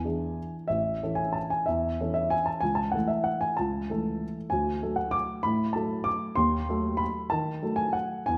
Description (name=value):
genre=classical, piano waltz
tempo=176-208 BPM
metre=3/4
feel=rubato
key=A major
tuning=A4 = 440 Hz
part: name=dark baby grand piano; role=solo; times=0.0-8.4 s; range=A1 to D6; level=-28 LUFS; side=equal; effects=none
room=wet recital hall reverb, RT60 1.6 s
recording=none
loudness=-28 LUFS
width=mono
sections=0.0-8.4 A section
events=none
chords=0.0 E7; 0.7 A; 2.6 A/C#; 4.5 D; 6.4 D#dim7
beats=0.05 0.38 | 0.71 1.03 1.36 | 1.69 2.00 2.33 | 2.64 2.95 3.28 | 3.59 3.91 4.23 | 4.53 4.83 5.14 | 5.45 5.75 6.06 | 6.38 6.69 7.00 | 7.32 7.62 7.94 | 8.27